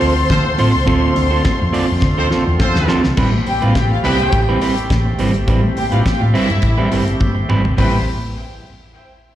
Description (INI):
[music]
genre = disco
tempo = 104 BPM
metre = 4/4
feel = straight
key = A minor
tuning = A4 = 441 Hz
[part]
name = dark studio string section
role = second line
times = 0.0-8.1 s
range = E4 to C6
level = -23 LUFS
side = left 1 dB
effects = tape echo, plate reverb, slapback echo
[part]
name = electric guitar at the edge of break-up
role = accompaniment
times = 0.0-8.0 s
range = G3 to D5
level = -19 LUFS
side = right 4 dB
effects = plate reverb, slapback echo
[part]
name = bright tonewheel organ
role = sustained chords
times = 0.0-8.1 s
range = D3 to C5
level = -24 LUFS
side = equal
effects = slow rotary speaker, plate reverb
[part]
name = hollow-body short-scale fingered electric bass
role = bass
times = 0.0-8.1 s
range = G1 to D3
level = -17 LUFS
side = equal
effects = none
[part]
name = damped 70s drum kit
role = drums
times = 0.0-7.9 s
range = crash cymbal, hi-hat, kick drum, snare drum, toms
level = -20 LUFS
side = equal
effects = none
[part]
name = warm horn section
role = stabs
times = 0.3-8.0 s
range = G3 to C5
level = -23 LUFS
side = left 1 dB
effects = plate reverb, slapback echo
[part]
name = congas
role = percussion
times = 0.3-8.1 s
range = none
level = -27 LUFS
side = left 5 dB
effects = none
[sound]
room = light reverb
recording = live gig heard through the venue's PA, recital hall reverb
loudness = -13 LUFS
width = side -12 dB against mid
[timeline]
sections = 0.0-3.2 A section; 3.2-7.8 B section; 7.8-9.3 C section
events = drum fill 2.0-3.2, 7.2-7.8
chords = 0.0 Dm7; 3.2 Am9